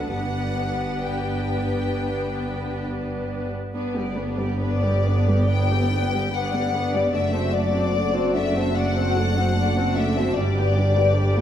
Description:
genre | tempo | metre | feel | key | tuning
classical, slow romantic movement for string orchestra | 64-76 BPM | 4/4 | rubato | G major | A4 = 438 Hz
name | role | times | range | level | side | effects
clear studio violin section | melody | 0.0-11.4 s | D5 to G5 | -27 LUFS | left 5 dB | none
rich studio violin section | second line | 0.0-11.4 s | F#4 to G5 | -31 LUFS | left 3 dB | none
rich studio viola section | accompaniment | 0.0-11.4 s | G3 to G4 | -26 LUFS | equal | none
rich studio double bass section | bass | 0.0-11.4 s | F#1 to D2 | -28 LUFS | right 2 dB | none
warm studio cello section | bass | 0.0-11.4 s | F#2 to D3 | -25 LUFS | right 1 dB | none
room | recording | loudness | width
wet recital hall reverb, RT60 1.3 s | heard from further back in the room | -20 LUFS | side -10 dB against mid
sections
0.0-3.7 A section; 3.7-11.4 A section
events
none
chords
0.1 G; 7.1 D7/F#; 10.4 G

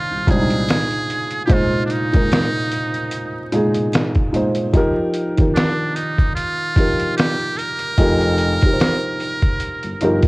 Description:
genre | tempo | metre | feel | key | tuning
lo-fi hip hop | 74 BPM | 4/4 | swing 57% on 16ths | unclear | A4 = 441 Hz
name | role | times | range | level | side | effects
trumpet with metal mute | melody | 0.0-10.3 s | D4 to Bb4 | -23 LUFS | right 2 dB | none
felt-muted upright piano | accompaniment | 0.0-10.3 s | Bb2 to C5 | -20 LUFS | equal | cassette tape
dark grand piano | bass | 0.1-0.6, 8.0-10.3 s | F1 to C2 | -21 LUFS | equal | none
trip hop sampler-style drum kit | drums | 0.3-10.3 s | hi-hat, kick drum, snare drum | -18 LUFS | equal | none
room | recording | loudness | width
light reverb, small room ambience | worn, warbling old tape, cassette tape, vinyl crackle, warbly pitch drift | -16 LUFS | side -23 dB against mid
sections
0.0-10.3 A section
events
none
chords
0.0 Bb9sus4; 4.7 F9sus4

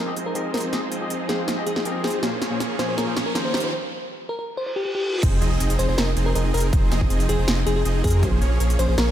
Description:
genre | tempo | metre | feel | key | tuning
future bass | 160 BPM | 4/4 | half-time | F minor | A4 = 440 Hz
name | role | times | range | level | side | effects
bell-like FM electric piano | melody | 0.0-9.1 s | G4 to C5 | -28 LUFS | left 2 dB | chorus, sidechain pumping, low-pass filter, digital delay
barky tine electric piano | accompaniment | 0.0-3.7 s | Bb2 to F5 | -31 LUFS | left 3 dB | phaser, sidechain pumping, digital delay
clear studio string section | sustained chords | 0.0-3.7 s | G3 to C5 | -36 LUFS | equal | none
supersaw chords | riff | 0.0-9.1 s | F3 to Eb5 | -27 LUFS | right 1 dB | sidechain pumping, low-pass filter
riser, reverse cymbal and sub drop | sound effects | 1.4-6.7 s | none | -34 LUFS | right 1 dB | none
big-room dance drum kit | drums | 0.2-9.1 s | crash cymbal, hi-hat, snare drum | -28 LUFS | equal | none
saturated sub bass | bass | 5.2-9.1 s | F1 to F2 | -21 LUFS | equal | tube saturation, sidechain pumping
electronic kick drum | drums | 5.2-8.3 s | none | -21 LUFS | equal | none
room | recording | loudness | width
light reverb | none | -20 LUFS | side -11 dB against mid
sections
0.0-5.2 A section; 5.2-9.1 B section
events
build-up 0.0-5.2; drum fill 0.0-3.7; riser 1.4-3.7; break 3.7-5.2; reverse cymbal 4.6-5.2; drop 5.2-9.1; impact 5.2-6.7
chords
0.0 Fm7; 2.2 Bbm9; 3.5 Eb13; 5.2 Fm7; 8.2 Bbm9

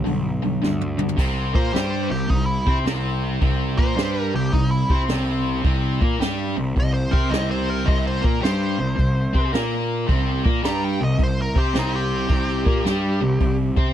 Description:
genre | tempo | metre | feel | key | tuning
blues rock power trio and southern rock | 108 BPM | 4/4 | swing 66% on 8ths | unclear | A4 = 439 Hz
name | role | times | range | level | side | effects
distorted electric guitar | riff | 0.0-13.9 s | G2 to C5 | -24 LUFS | left 1 dB | distortion
fuzz picked electric bass | bass | 0.0-13.9 s | B1 to C3 | -24 LUFS | equal | overdrive
jazz brush drum kit | drums | 0.1-13.9 s | crash cymbal, hi-hat, kick drum, snare drum, toms | -22 LUFS | equal | none
nasal lead guitar with a parked wah | melody | 1.6-13.6 s | Eb4 to Bb5 | -28 LUFS | equal | overdrive, tape echo
room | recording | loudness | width
studio ambience | dry, close 1970s-style studio recording | -19 LUFS | side -11 dB against mid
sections
0.0-1.2 A section; 1.2-13.9 B section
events
drum fill 0.6-1.2; lead electric guitar solo 1.2-13.9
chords
0.0 G; 1.2 C5

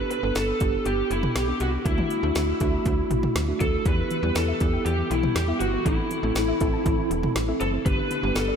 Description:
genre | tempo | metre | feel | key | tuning
synth-pop | 120 BPM | 4/4 | straight | G major | A4 = 439 Hz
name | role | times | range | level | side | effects
lead guitar through a small cranked amp | melody | 0.0-8.6 s | E4 to B4 | -27 LUFS | left 1 dB | overdrive, wide subtle chorus
mellow tine electric piano | accompaniment | 0.0-8.6 s | A3 to A4 | -28 LUFS | right 3 dB | medium stereo tremolo
slap-like FM bass | bass | 0.0-8.5 s | E1 to E2 | -28 LUFS | equal | none
deep house drum kit | drums | 0.1-8.5 s | hi-hat, kick drum, snare drum, toms | -28 LUFS | equal | none
soft round pluck | arpeggios | 3.9-8.6 s | D3 to A5 | -33 LUFS | left 4 dB | chorus, diffuse ambient delay
room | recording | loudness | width
moderate cathedral reverb, RT60 5.0 s | dreamy mix soaked in reverb | -22 LUFS | side -7 dB against mid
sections
0.0-8.6 A section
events
none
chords
0.0 G; 1.9 D; 3.9 Em; 5.9 Am; 7.9 G

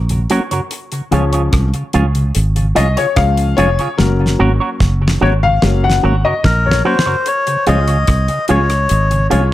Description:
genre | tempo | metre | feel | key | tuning
roots reggae | 73 BPM | 4/4 | straight | Db major | A4 = 440 Hz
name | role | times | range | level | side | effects
warm upright piano | stabs | 0.0-9.5 s | F3 to Gb5 | -17 LUFS | left 5 dB | plate reverb
fingered electric bass | bass | 0.0-9.5 s | F1 to Db2 | -14 LUFS | right 1 dB | none
mellow tonewheel organ | accompaniment | 0.1-9.4 s | Gb2 to Db4 | -21 LUFS | left 1 dB | slow rotary speaker
damped 70s drum kit | drums | 0.1-9.5 s | hi-hat, kick drum, rim click, snare drum | -18 LUFS | equal | none
electric guitar with an envelope filter | accompaniment | 0.3-9.5 s | F4 to Db5 | -21 LUFS | right 4 dB | spring reverb, tape echo, plate reverb
melodica | melody | 6.4-9.3 s | Bb4 to Eb5 | -16 LUFS | left 2 dB | tape echo, plate reverb
room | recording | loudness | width
light reverb | none | -12 LUFS | side -14 dB against mid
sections
0.0-7.3 A section; 7.3-9.5 B section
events
upright piano solo 0.0-7.3; drum fill 4.0-7.3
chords
0.0 Gb; 0.7 Db; 4.0 Gb; 7.3 Db

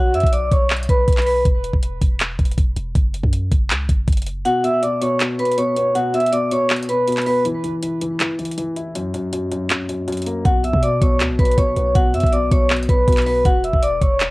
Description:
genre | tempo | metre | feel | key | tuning
hip hop, trap | 160 BPM | 4/4 | half-time | B minor | A4 = 440 Hz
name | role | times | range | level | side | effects
vibraphone with medium hard mallets | melody | 0.0-1.4, 4.5-7.4, 10.4-14.2 s | F#4 to E6 | -18 LUFS | equal | cassette tape, tape echo
warm 808-style bass | bass | 0.0-4.4, 10.5-14.3 s | E1 to B2 | -23 LUFS | equal | none
trap drum kit | drums | 0.1-14.3 s | handclaps, hi-hat, kick drum | -18 LUFS | equal | cassette tape
dark concert grand piano | accompaniment | 4.5-13.5 s | F#2 to E4 | -23 LUFS | left 1 dB | cassette tape
room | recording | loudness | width
little or no reverb | home recording on cassette | -16 LUFS | side -21 dB against mid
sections
0.0-14.3 A section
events
break 1.5-4.5, 4.5-10.5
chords
0.0 Bm; 1.5 N.C.; 3.0 F#5; 4.5 Bm; 7.5 N.C.; 9.0 F#; 10.5 Bm; 13.5 E5

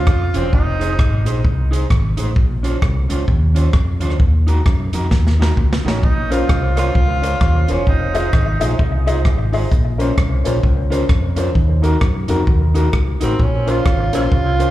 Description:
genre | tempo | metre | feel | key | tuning
ska | 130 BPM | 4/4 | swing 61% on 8ths | Bb minor | A4 = 444 Hz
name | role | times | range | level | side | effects
clear tenor saxophone | melody | 0.0-1.2, 5.9-8.8, 13.2-14.7 s | C4 to F4 | -22 LUFS | right 2 dB | tape echo, slapback echo
deep dub fingered electric bass | bass | 0.0-14.7 s | E1 to Gb2 | -17 LUFS | equal | none
swinging big-band drum kit | drums | 0.1-14.7 s | hi-hat, kick drum, rim click, snare drum | -18 LUFS | equal | none
electric guitar at the edge of break-up | accompaniment | 0.3-14.7 s | Db4 to C5 | -25 LUFS | right 2 dB | slapback echo
dark upright piano | stabs | 6.3-14.7 s | Db4 to Eb5 | -23 LUFS | left 5 dB | tape echo, slapback echo
room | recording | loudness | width
studio ambience | live gig heard through the venue's PA, club reverb | -14 LUFS | side -14 dB against mid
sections
0.0-14.7 A section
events
drum fill 5.1-6.0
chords
0.0 Bbmadd9 (rootless); 0.5 Fm7; 2.4 Bbmadd9; 4.2 Ebm; 6.0 Bbmadd9; 7.9 Fm7; 9.7 Bbmadd9; 11.6 Ebm; 13.4 Bbmadd9

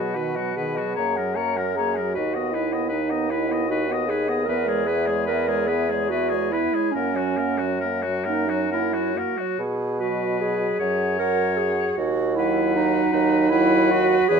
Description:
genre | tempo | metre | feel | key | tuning
classical, slow romantic movement for wind quintet | 44-53 BPM (dotted quarters) | 6/8 | rubato | B major | A4 = 440 Hz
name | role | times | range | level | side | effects
mellow hollow silver concert flute | melody | 0.0-14.4 s | C#5 to A#5 | -30 LUFS | left 14 dB | none
clear oboe | second line | 0.0-14.4 s | F#4 to D#5 | -29 LUFS | left 7 dB | none
mellow clarinet | accompaniment | 0.0-14.4 s | C#4 to A#4 | -24 LUFS | right 6 dB | none
warm French horn | accompaniment | 0.0-14.4 s | D#3 to D#4 | -30 LUFS | left 3 dB | none
warm bassoon | bass | 0.0-14.4 s | D#2 to B2 | -26 LUFS | right 2 dB | none
room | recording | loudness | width
moderate recital hall reverb, RT60 1.4 s | none | -20 LUFS | side -6 dB against mid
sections
0.0-14.4 A section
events
none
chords
0.0 B; 1.0 F#; 2.2 B/D#; 4.5 C#m7/E; 6.9 F#; 9.6 B; 10.8 F#5; 12.0 B/D#

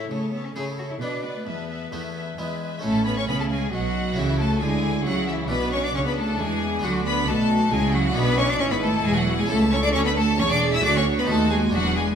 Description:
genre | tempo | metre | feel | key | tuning
classical, baroque-style concerto movement with solo episodes | 134 BPM | 3/4 | straight | A major | A4 = 439 Hz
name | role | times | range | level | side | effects
rich cello | melody | 0.0-12.2 s | E3 to G#4 | -25 LUFS | left 1 dB | none
rich chamber violin section | melody | 0.0-12.2 s | E5 to E6 | -29 LUFS | left 3 dB | none
rich chamber violin section | second line | 0.0-12.0 s | E4 to E5 | -29 LUFS | left 2 dB | none
harpsichord | accompaniment | 0.0-12.2 s | C#2 to A4 | -32 LUFS | equal | none
rich chamber viola section | accompaniment | 0.0-12.2 s | C#4 to B4 | -32 LUFS | right 3 dB | none
rich symphonic cello section | bass | 0.0-12.2 s | C#2 to E3 | -29 LUFS | right 3 dB | none
warm chamber double bass section | bass | 2.8-12.2 s | E1 to E2 | -29 LUFS | right 4 dB | none
room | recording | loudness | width
wet recital hall reverb, RT60 1.3 s | minimal, uncompressed stereo recording | -20 LUFS | side -8 dB against mid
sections
0.0-2.8 A section; 2.8-12.2 B section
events
none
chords
0.1 A/C#; 1.0 Bm; 1.5 Esus4; 2.4 E; 2.8 A; 4.2 A/C#; 5.5 Bm; 8.2 E7; 9.5 A/C#; 10.8 D; 11.3 D#dim7

